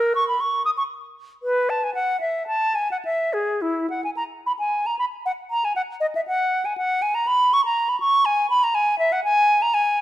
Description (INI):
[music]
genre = classical, baroque-style fantasia for unaccompanied flute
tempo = 103-124 BPM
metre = 3/4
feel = rubato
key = E major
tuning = A4 = 440 Hz
[part]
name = silver concert flute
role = solo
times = 0.0-10.0 s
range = E4 to D#6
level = -19 LUFS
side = equal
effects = none
[sound]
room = moderate recital hall reverb, RT60 1.6 s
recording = none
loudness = -19 LUFS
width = side -14 dB against mid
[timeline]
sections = 0.0-4.7 A section; 4.7-10.0 A section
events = none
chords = none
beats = 0.39 0.89 | 1.43 1.96 2.49 | 3.06 3.62 4.18 | 4.74 5.27 5.78 | 6.28 6.78 7.28 | 7.78 8.27 8.76 | 9.25 9.74